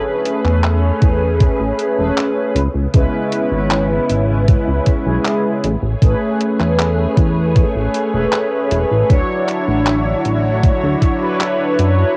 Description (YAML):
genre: vaporwave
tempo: 78 BPM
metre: 4/4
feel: straight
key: A major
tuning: A4 = 441 Hz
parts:
  - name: mellow synth brass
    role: accompaniment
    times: 0.0-12.2 s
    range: F#3 to C#5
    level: -20 LUFS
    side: equal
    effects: lush chorus, cassette tape, analog delay, plate reverb
  - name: soft string machine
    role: sustained chords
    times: 0.0-12.2 s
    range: C#3 to C#5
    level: -27 LUFS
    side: equal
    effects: phaser, ensemble chorus, cassette tape, plate reverb
  - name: detuned 8-bit digital drum machine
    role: drums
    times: 0.3-11.9 s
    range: handclaps, hi-hat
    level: -25 LUFS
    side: equal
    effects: cassette tape
  - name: chorused synth bass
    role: bass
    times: 0.4-12.0 s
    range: E1 to F#2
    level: -20 LUFS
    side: equal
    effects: none
  - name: electronic kick drum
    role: drums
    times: 1.0-11.2 s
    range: none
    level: -16 LUFS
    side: equal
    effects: cassette tape
room: moderate studio ambience, RT60 0.5 s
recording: home recording on cassette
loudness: -16 LUFS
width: mono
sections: 0.0-12.2 A section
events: none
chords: 0.0 Amaj9; 2.6 C#m7; 5.6 Amaj9; 9.1 Dmaj9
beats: 0.64 1.41 2.17 | 2.94 3.71 4.48 5.25 | 6.02 6.79 7.56 8.33 | 9.10 9.87 10.64 11.41